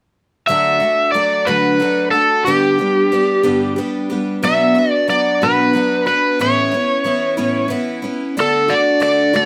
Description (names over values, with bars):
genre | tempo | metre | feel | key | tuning
rock | 61 BPM (dotted quarters) | 6/8 | straight | D major | A4 = 439 Hz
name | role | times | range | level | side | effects
overdriven slide guitar | melody | 0.5-9.5 s | G4 to E5 | -17 LUFS | equal | slapback echo
picked twelve-string acoustic guitar | accompaniment | 0.5-9.5 s | G2 to G4 | -21 LUFS | equal | none
room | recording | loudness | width
moderate studio reverb, RT60 0.6 s | none | -16 LUFS | mono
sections
0.5-8.4 A section; 8.4-9.5 B section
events
none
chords
0.5 D; 2.5 G; 4.4 Bm; 6.4 Aadd9; 8.4 D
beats
| 0.48 1.47 | 2.46 3.44 | 4.43 5.42 | 6.40 7.38 | 8.37 9.35